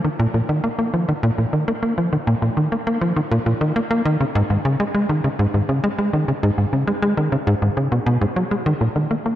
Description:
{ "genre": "ambient", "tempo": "101 BPM", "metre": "4/4", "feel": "straight", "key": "unclear", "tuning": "A4 = 440 Hz", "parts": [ { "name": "tight sequencer bass", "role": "solo", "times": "0.0-9.4 s", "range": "Ab2 to Bb3", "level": "-18 LUFS", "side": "equal", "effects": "tape echo" } ], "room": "moderate plate reverb, RT60 3.0 s", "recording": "dark, warm production", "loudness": "-18 LUFS", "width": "side -12 dB against mid", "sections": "0.0-8.8 A section", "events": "none", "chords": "none", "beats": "0.49 1.08 | 1.68 2.27 2.87 3.46 | 4.05 4.65 5.24 5.84 | 6.43 7.03 7.62 8.21 | 8.81" }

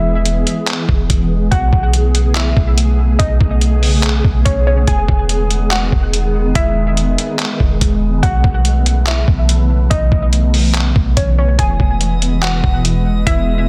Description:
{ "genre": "hip hop, atmospheric cloud-rap", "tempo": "143 BPM", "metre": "4/4", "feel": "half-time", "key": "E major", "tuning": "A4 = 443 Hz", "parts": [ { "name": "warbly dusty pluck", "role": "melody", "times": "0.0-13.7 s", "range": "C#5 to G#5", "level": "-25 LUFS", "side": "equal", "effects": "chorus, digital delay" }, { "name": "glassy FM pad", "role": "sustained chords", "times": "0.0-13.7 s", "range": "B2 to G#4", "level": "-22 LUFS", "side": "equal", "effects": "ensemble chorus, built-in reverb, phaser, sidechain pumping" }, { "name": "clean 808-style bass", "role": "bass", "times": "0.0-13.7 s", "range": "E1 to B1", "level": "-17 LUFS", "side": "equal", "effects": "none" }, { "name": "trip hop sampler-style drum kit", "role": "drums", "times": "0.3-13.4 s", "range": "handclaps, hi-hat, kick drum", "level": "-19 LUFS", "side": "equal", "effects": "none" }, { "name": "drifting glass-harmonics texture", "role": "texture", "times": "11.8-13.7 s", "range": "G#3 to D#6", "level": "-34 LUFS", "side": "equal", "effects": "chorus, built-in reverb" } ], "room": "light reverb, digital ambience", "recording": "dense, heavily limited modern master", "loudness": "-14 LUFS", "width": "mono", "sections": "0.0-13.7 A section", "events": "none", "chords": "0.0 E; 1.5 B9sus4; 4.9 Emaj7; 8.2 B9sus4; 11.6 Emaj7", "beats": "0.26 0.68 1.10 | 1.52 1.94 2.36 2.78 | 3.19 3.62 4.03 4.45 | 4.87 5.29 5.71 6.13 | 6.55 6.97 7.39 7.81 | 8.23 8.65 9.07 9.49 | 9.91 10.33 10.75 11.17 | 11.59 12.01 12.43 12.85 | 13.27 13.69" }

